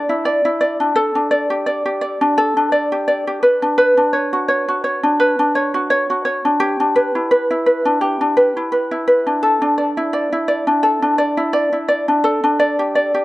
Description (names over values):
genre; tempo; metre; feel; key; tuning
pop; 85 BPM; 4/4; swing 55% on 16ths; D major; A4 = 439 Hz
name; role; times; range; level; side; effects
ukulele; solo; 0.0-13.2 s; D4 to D5; -14 LUFS; equal; dub echo
room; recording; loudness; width
light reverb, small room ambience; echo-heavy mix, cassette tape; -14 LUFS; side -18 dB against mid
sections
0.0-13.2 A section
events
none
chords
0.0 Dsus2; 1.0 Gsus2; 3.4 Bmadd9; 6.6 Em7; 9.4 Dsus2; 12.2 Gsus2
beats
0.26 | 0.96 1.67 2.37 3.08 | 3.78 4.48 5.19 5.89 | 6.60 7.31 8.01 8.72 | 9.42 10.13 10.83 11.54 | 12.24 12.95